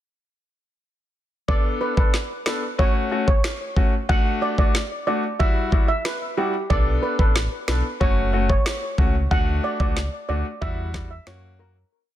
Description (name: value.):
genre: dancehall.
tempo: 92 BPM.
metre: 4/4.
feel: straight.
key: B minor.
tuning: A4 = 440 Hz.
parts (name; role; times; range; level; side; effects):
steel pan; melody; 1.5-11.7 s; G4 to F#5; -26 LUFS; right 3 dB; ping-pong delay.
clear baby grand piano; accompaniment; 1.5-11.7 s; G3 to A4; -27 LUFS; left 4 dB; none.
island pop drum kit; drums; 1.5-11.4 s; kick drum, snare drum; -21 LUFS; equal; none.
sub bass with octave; bass; 6.7-11.8 s; F#1 to F#2; -24 LUFS; equal; none.
room: studio reverb.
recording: dense, heavily limited modern master.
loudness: -19 LUFS.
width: side -12 dB against mid.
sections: 1.5-11.9 verse.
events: fade-out 9.3-11.9.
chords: 1.5 Bm7; 2.8 F#m; 4.1 D; 5.4 Emadd9; 6.7 Bm7; 8.0 F#m; 9.3 D; 10.6 Emadd9; 11.3 F#.